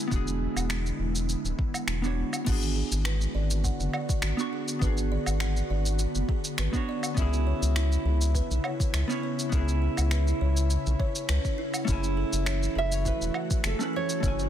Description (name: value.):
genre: sunset chillout.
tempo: 102 BPM.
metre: 4/4.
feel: swing 54% on 16ths.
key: unclear.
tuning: A4 = 440 Hz.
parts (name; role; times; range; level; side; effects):
nylon-string guitar; melody; 0.0-1.8, 12.8-14.5 s; G#4 to E5; -32 LUFS; right 5 dB; tape echo.
vintage hollow-body jazz guitar; accompaniment; 0.0-14.5 s; A3 to C#6; -33 LUFS; right 2 dB; auto-pan, tape echo.
ethereal airy pad; sustained chords; 0.0-14.5 s; C#3 to F#4; -34 LUFS; left 1 dB; ensemble chorus, built-in reverb.
round analog bass; bass; 0.1-14.5 s; D1 to C#2; -26 LUFS; equal; none.
electronic kick drum; drums; 0.1-14.4 s; none; -28 LUFS; equal; overdrive.
smooth R&B drum kit; drums; 0.1-14.5 s; crash cymbal, finger snaps, shaker, woodblock; -34 LUFS; equal; overdrive, soft clipping on snare.
buzzing kalimba; arpeggios; 2.5-14.4 s; E4 to F#5; -38 LUFS; right 2 dB; tape echo.
room: little or no reverb.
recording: dense, heavily limited modern master.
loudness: -25 LUFS.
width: side -10 dB against mid.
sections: 0.0-2.5 A section; 2.5-14.5 B section.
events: kick drops out 1.9-2.5.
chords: 0.0 E7; 2.5 G#m7b5; 7.2 C#m7; 11.9 F#m9.